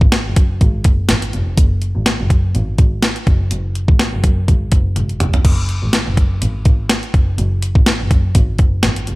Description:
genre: 1980s-style pop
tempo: 124 BPM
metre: 4/4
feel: swing 55% on 16ths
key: unclear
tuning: A4 = 440 Hz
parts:
  - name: warm double bass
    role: bass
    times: 0.0-9.2 s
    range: F1 to F#2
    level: -18 LUFS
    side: equal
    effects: none
  - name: clean 12-bit digital drum machine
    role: drums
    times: 0.0-9.2 s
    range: crash cymbal, hi-hat, kick drum, snare drum, toms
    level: -13 LUFS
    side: equal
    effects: none
room: little or no reverb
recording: none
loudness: -13 LUFS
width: side -21 dB against mid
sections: 0.0-9.2 A section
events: drum fill 5.0-5.4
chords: none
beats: 0.12 0.61 1.09 | 1.58 2.06 2.54 3.03 | 3.51 4.00 4.48 4.96 | 5.45 5.93 6.42 6.90 | 7.38 7.87 8.35 8.83

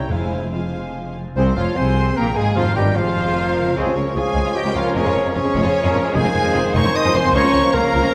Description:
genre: classical, dramatic, fast romantic movement for symphony orchestra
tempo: 150 BPM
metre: 3/4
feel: straight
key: F minor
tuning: A4 = 440 Hz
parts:
  - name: warm symphonic violin section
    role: melody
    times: 0.0-8.1 s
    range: C5 to Eb6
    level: -29 LUFS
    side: equal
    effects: none
  - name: bright silver concert flute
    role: second line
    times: 0.0-8.1 s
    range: Ab4 to C6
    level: -31 LUFS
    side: equal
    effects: none
  - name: dark clarinet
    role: second line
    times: 0.0-8.1 s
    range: C4 to Eb5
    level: -31 LUFS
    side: equal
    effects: none
  - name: rich symphonic violin section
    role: second line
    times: 0.0-8.1 s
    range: Ab3 to F5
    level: -32 LUFS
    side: equal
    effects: none
  - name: warm cor anglais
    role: second line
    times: 0.0-8.1 s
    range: Bb4 to Ab5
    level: -32 LUFS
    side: equal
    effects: none
  - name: dark bassoon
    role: accompaniment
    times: 0.0-8.1 s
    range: C3 to C4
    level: -29 LUFS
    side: equal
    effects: none
  - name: dark symphonic viola section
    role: accompaniment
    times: 0.0-8.1 s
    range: E4 to C5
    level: -29 LUFS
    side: equal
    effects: none
  - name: mellow French horn section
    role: sustained chords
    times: 0.0-8.1 s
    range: C3 to Eb4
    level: -29 LUFS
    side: equal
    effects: none
  - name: concert harp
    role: arpeggios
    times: 0.0-8.1 s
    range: Ab2 to Ab5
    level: -34 LUFS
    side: equal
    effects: none
  - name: clear studio cello section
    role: bass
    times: 0.0-8.1 s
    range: C2 to C3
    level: -27 LUFS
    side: equal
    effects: none
  - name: clear symphonic double bass section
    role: bass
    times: 0.0-8.0 s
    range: F1 to Db2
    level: -26 LUFS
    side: equal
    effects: none
  - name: timpani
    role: percussion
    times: 0.1-3.1 s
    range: F2 to Ab2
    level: -29 LUFS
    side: equal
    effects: none
  - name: clear trombone section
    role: sustained chords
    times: 1.4-8.1 s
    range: C3 to C4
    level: -33 LUFS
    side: equal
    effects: none
  - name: dark trumpet section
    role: stabs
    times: 1.4-8.1 s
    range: C4 to Eb5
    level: -28 LUFS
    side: equal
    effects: none
room: moderate scoring stage reverb, RT60 2.0 s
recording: none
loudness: -18 LUFS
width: mono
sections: 0.0-1.4 A section; 1.4-8.1 B section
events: none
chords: 0.1 Fm; 3.8 Db; 5.0 Db/F; 6.2 Fm7; 7.3 Bbm/Db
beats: | 0.10 0.52 0.95 | 1.36 1.77 2.17 | 2.57 2.97 3.37 | 3.77 4.16 4.56 | 4.95 5.35 5.75 | 6.15 6.55 6.95 | 7.35 7.74 8.14

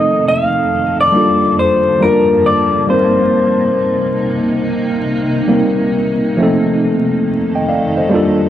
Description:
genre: hip hop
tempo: 69 BPM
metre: 4/4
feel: swing 64% on 16ths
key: C dorian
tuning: A4 = 440 Hz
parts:
  - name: electric guitar through a small old amp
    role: melody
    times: 0.0-5.9 s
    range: Bb4 to F5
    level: -14 LUFS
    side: left 2 dB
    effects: low-pass filter, analog delay
  - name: tine electric piano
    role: accompaniment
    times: 0.0-8.5 s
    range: F3 to G5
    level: -15 LUFS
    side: equal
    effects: overdrive, fast stereo tremolo, low-pass filter
  - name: granular cloud pad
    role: sustained chords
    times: 0.0-8.5 s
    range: F2 to A5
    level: -19 LUFS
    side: equal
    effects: built-in reverb, low-pass filter
room: moderate studio reverb, RT60 0.6 s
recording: worn, warbling old tape, cassette tape, vinyl crackle, warbly pitch drift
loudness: -11 LUFS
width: side -11 dB against mid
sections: 0.0-8.5 A section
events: none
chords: 0.0 F7; 1.1 Gm9; 2.9 Cm7; 6.4 F7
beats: 0.28 1.15 2.02 | 2.89 3.76 4.62 5.50 | 6.37 7.23 8.10

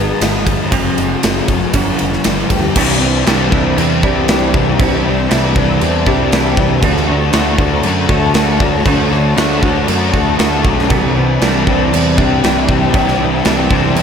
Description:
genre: rock, shoegaze and dream pop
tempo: 118 BPM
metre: 4/4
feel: straight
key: unclear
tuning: A4 = 436 Hz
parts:
  - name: granular cloud pad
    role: sustained chords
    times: 0.0-14.0 s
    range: G#4 to D#6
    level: -25 LUFS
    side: right 2 dB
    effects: built-in reverb
  - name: fingerpicked twelve-string acoustic guitar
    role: arpeggios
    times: 0.0-14.0 s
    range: E3 to A4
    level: -23 LUFS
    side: left 8 dB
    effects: ensemble chorus, digital delay
  - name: semi-hollow electric guitar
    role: riff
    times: 0.0-14.0 s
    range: F#2 to G#4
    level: -18 LUFS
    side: right 9 dB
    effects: reverse reverb
  - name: thick fuzz guitar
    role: riff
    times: 0.0-14.0 s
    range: F#2 to D4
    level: -17 LUFS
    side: left 8 dB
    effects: distortion, ensemble chorus
  - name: modern bright picked electric bass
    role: bass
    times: 0.0-14.0 s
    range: F1 to F#2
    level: -19 LUFS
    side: equal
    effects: none
  - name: gated 80s drum kit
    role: drums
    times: 0.2-14.0 s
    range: crash cymbal, kick drum, ride cymbal, snare drum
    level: -16 LUFS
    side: equal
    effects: none
room: light reverb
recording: none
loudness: -11 LUFS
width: side -7 dB against mid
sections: 0.0-2.8 A section; 2.8-14.0 B section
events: none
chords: 0.0 G#m7; 0.7 F#madd9; 1.7 G7; 2.8 Cadd9; 6.8 Dmaj7; 10.9 Cadd9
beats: 0.21 | 0.72 1.23 1.74 2.25 | 2.76 3.27 3.78 4.29 | 4.79 5.30 5.81 6.32 | 6.83 7.34 7.85 8.36 | 8.86 9.37 9.88 10.39 | 10.90 11.41 11.92 12.43 | 12.94 13.45 13.96

